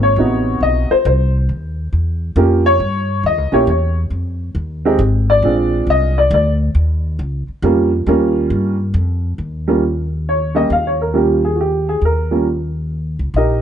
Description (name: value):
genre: jazz piano trio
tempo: 137 BPM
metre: 3/4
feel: swing 66% on 8ths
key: Eb mixolydian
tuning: A4 = 440 Hz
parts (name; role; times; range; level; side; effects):
- dark upright piano; melody; 0.0-13.6 s; C3 to F5; -14 LUFS; equal; plate reverb
- upright bass; bass; 0.0-13.6 s; Ab1 to G2; -17 LUFS; equal; none
room: moderate studio reverb, RT60 0.6 s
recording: nothing above 10.8 kHz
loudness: -14 LUFS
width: side -9 dB against mid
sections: 0.0-9.4 A section; 9.4-13.6 B section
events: upright piano solo 0.0-9.4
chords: 0.2 Adim7; 1.5 Eb7sus2; 2.8 Gdim; 3.7 Dbm/Fb; 4.1 Fm7; 5.4 Bb9; 6.8 Eb9; 9.4 Eb7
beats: | 0.18 0.62 1.05 | 1.49 1.93 2.37 | 2.81 3.25 3.68 | 4.12 4.56 5.00 | 5.44 5.87 6.31 | 6.75 7.19 7.63 | 8.07 8.51 8.95 | 9.38 9.82 10.26 | 10.70 11.14 11.59 | 12.03 12.47 12.91 | 13.35